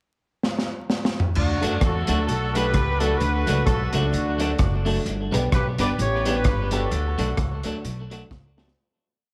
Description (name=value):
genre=ska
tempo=130 BPM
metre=4/4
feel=swing 57% on 8ths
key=D major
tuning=A4 = 440 Hz
part: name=crunchy breakbeat drum kit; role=drums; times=0.4-8.8 s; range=crash cymbal, hi-hat, kick drum, rim click, snare drum, toms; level=-28 LUFS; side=equal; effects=none
part: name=clear horn section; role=melody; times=1.4-7.6 s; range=D4 to D5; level=-29 LUFS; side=equal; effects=tape echo
part: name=upright bass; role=bass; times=1.4-8.7 s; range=F#1 to F#2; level=-27 LUFS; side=equal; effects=none
part: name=clean electric guitar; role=accompaniment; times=1.6-8.7 s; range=F#3 to G4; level=-33 LUFS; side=equal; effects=spring reverb, tape echo
part: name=dark upright piano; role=stabs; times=1.6-8.7 s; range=A3 to B4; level=-33 LUFS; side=equal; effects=tape echo
room=light reverb, small room ambience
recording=vinyl crackle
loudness=-23 LUFS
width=mono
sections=0.0-1.4 pickup bar; 1.4-8.8 A section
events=drum fill 0.4-1.4, 8.3-8.8; fade-out 6.9-8.8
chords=0.0 N.C.; 1.4 D; 5.1 G; 6.9 D